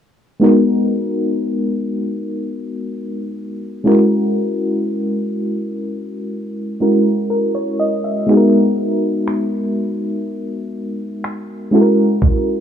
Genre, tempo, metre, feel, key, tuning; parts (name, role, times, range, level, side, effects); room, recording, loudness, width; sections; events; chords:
contemporary R&B; 61 BPM; 4/4; straight; G# minor; A4 = 440 Hz
FM electric piano with tremolo; accompaniment; 0.4-12.6 s; G#3 to E5; -16 LUFS; equal
smooth R&B drum kit; drums; 9.3-12.4 s; finger snaps, kick drum; -17 LUFS; right 1 dB
light reverb; low-pass filter; -15 LUFS; side -9 dB against mid
0.4-12.6 A section
filter sweep 0.4-12.6
0.4 G#m7; 3.9 F#9; 8.3 G#m7; 11.7 F#9